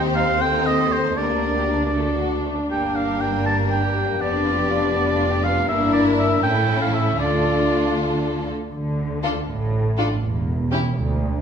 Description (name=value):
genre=quick classical-period movement for symphony orchestra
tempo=80 BPM (dotted quarters)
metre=6/8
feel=straight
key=G minor, D minor from 5.7 s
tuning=A4 = 440 Hz
part: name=rich chamber violin section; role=melody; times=0.0-10.8 s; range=G4 to C5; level=-31 LUFS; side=left 3 dB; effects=none
part: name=rich chamber violin section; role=second line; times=0.0-10.8 s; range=G3 to A4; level=-28 LUFS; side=left 3 dB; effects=none
part: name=warm chamber viola section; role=accompaniment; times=0.0-10.8 s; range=C4 to D4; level=-27 LUFS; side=left 1 dB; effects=none
part: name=dark French horn section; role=sustained chords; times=0.0-8.4 s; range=A3 to A4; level=-25 LUFS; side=left 4 dB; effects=none
part: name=warm chamber cello section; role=bass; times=0.0-11.4 s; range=D2 to D3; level=-26 LUFS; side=right 1 dB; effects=none
part: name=warm studio double bass section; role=bass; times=0.0-11.4 s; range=E1 to Eb2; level=-27 LUFS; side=right 3 dB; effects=none
part: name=warm oboe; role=second line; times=0.2-8.0 s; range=C5 to A5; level=-23 LUFS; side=right 2 dB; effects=none
room=wet recital hall reverb, RT60 1.4 s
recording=minimal, uncompressed stereo recording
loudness=-18 LUFS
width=side -7 dB against mid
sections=0.0-8.7 A section; 8.7-11.4 B section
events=none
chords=0.4 Am7b5/Eb; 1.2 Gm/D; 1.9 D; 2.7 Gm; 4.2 G7/F; 5.7 Em7b5/G; 6.4 A7; 7.2 Dm; 8.7 D5; 10.2 C#m/E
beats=0.41 | 1.17 1.94 | 2.70 3.46 | 4.20 4.95 | 5.69 6.43 | 7.19 7.96 | 8.73 9.48 | 10.23 10.97